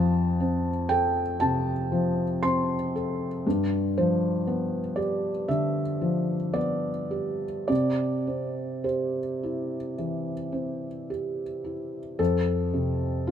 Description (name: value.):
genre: neoclassical minimalist piano.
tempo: 51-60 BPM.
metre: 4/4.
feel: rubato.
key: F major.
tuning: A4 = 440 Hz.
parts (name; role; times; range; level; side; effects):
felt-muted upright piano; solo; 0.0-13.3 s; F2 to C6; -25 LUFS; equal; none.
room: little or no reverb.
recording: minimal, uncompressed stereo recording.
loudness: -25 LUFS.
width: side -9 dB against mid.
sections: 0.0-12.2 A section; 12.2-13.3 B section.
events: none.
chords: 0.0 F; 3.4 G7; 7.7 C; 12.2 F.